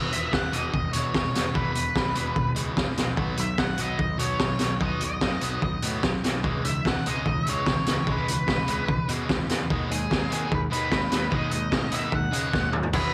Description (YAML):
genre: indie rock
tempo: 148 BPM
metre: 4/4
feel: straight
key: unclear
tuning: A4 = 440 Hz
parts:
  - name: distorted electric guitar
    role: riff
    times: 0.0-13.1 s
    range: E2 to B3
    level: -34 LUFS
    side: equal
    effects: distortion
  - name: fuzz picked electric bass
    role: bass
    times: 0.0-13.1 s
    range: E1 to C#3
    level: -36 LUFS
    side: equal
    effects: overdrive
  - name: octave-fuzz lead guitar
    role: melody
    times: 0.1-13.1 s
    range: G#4 to F#5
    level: -33 LUFS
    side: equal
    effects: distortion, tape echo
  - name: raw garage drum kit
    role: drums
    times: 0.1-13.0 s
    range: crash cymbal, hi-hat, kick drum, snare drum, toms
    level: -28 LUFS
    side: equal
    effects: none
  - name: twangy electric guitar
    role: riff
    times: 12.9-13.1 s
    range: F#3 to G#4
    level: -32 LUFS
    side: equal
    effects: subtle chorus
room: moderate plate reverb, RT60 1.0 s, small room ambience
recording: none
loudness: -26 LUFS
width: mono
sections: 0.0-12.9 A section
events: drum fill 12.5-12.9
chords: 0.0 E5; 3.2 B; 6.4 C#m7; 9.7 G#m/D#